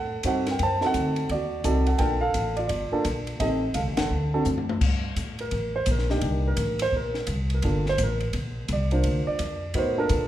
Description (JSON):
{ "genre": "jazz piano trio", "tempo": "170 BPM", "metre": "4/4", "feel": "swing 64% on 8ths", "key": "G minor", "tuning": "A4 = 445 Hz", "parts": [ { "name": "dark baby grand piano", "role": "melody", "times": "0.0-10.3 s", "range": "Bb3 to A5", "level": "-26 LUFS", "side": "right 2 dB", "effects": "none" }, { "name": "upright bass", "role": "bass", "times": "0.0-10.3 s", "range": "G1 to Bb2", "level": "-27 LUFS", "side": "equal", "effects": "none" }, { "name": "compact cocktail drum kit", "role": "drums", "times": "0.2-10.2 s", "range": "crash cymbal, hi-hat, kick drum, ride cymbal, snare drum, toms", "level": "-32 LUFS", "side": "left 2 dB", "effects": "none" } ], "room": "moderate recital hall reverb, RT60 1.4 s", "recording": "recorded in a church or concert hall", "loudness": "-23 LUFS", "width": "side -12 dB against mid", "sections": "0.0-4.8 A section; 4.8-10.3 B section", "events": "band accent 3.9; drum fill 4.5-4.8; grand piano solo 4.8-10.3", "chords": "0.0 D7b9; 2.0 Gm9; 3.4 Am7b5; 4.1 D; 4.8 Gmadd9; 6.2 Cm9; 7.6 Gm9", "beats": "0.24 | 0.59 0.94 1.29 1.65 | 2.00 2.35 2.70 3.05 | 3.41 3.76 4.11 4.46 | 4.81 5.17 5.52 5.87 | 6.22 6.57 6.93 7.28 | 7.63 7.98 8.33 8.69 | 9.04 9.39 9.74 10.09" }